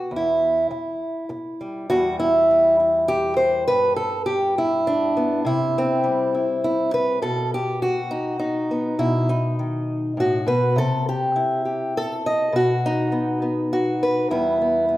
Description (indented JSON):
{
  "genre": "folk, solo fingerstyle acoustic guitar",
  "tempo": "102 BPM",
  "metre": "3/4",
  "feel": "straight",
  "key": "E harmonic minor",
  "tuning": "A4 = 440 Hz",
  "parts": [
    { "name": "fingerpicked acoustic archtop guitar", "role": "solo", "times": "0.0-15.0 s", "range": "E2 to D#5", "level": "-19 LUFS", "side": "equal", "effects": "none" }
  ],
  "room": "wet recital hall reverb, RT60 1.6 s",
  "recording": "recorded in a church or concert hall",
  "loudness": "-19 LUFS",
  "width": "side -15 dB against mid",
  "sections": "0.0-1.9 A section; 1.9-15.0 B section",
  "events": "none",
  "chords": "0.1 Em; 3.7 G; 5.4 C; 7.2 B; 10.8 Am7/C; 12.5 N.C.; 14.3 Em"
}